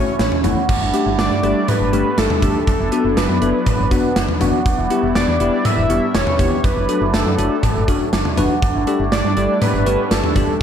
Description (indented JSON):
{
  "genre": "synth-pop",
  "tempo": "121 BPM",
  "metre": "4/4",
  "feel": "straight",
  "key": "unclear",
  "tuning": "A4 = 440 Hz",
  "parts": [
    { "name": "fat analog lead", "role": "melody", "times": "0.0-10.6 s", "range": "A4 to E5", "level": "-22 LUFS", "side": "equal", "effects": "chorus, diffuse ambient delay" },
    { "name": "bell-like tine electric piano", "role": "accompaniment", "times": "0.0-10.5 s", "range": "A3 to B4", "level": "-22 LUFS", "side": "left 5 dB", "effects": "none" },
    { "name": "lush unison pad", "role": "sustained chords", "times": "0.0-10.6 s", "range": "E3 to E4", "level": "-23 LUFS", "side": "right 1 dB", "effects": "chorus, phaser" },
    { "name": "cimbalom", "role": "arpeggios", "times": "0.0-10.6 s", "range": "B3 to G4", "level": "-25 LUFS", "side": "right 4 dB", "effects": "diffuse ambient delay" },
    { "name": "solid FM bass", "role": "bass", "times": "0.0-10.5 s", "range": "E1 to G2", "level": "-22 LUFS", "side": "equal", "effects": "none" },
    { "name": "gated 80s drum kit", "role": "drums", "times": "0.2-10.5 s", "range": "cowbell, crash cymbal, hi-hat, kick drum, snare drum, toms", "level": "-20 LUFS", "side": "equal", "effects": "none" }
  ],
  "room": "moderate plate reverb, RT60 2.5 s",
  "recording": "dreamy mix soaked in reverb",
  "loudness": "-15 LUFS",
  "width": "side -8 dB against mid",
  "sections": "0.7-10.6 A section",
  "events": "none",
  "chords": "0.0 A; 0.7 Gsus2; 2.7 Bm/F#; 4.7 Em; 6.6 D/F#; 8.6 Gsus2"
}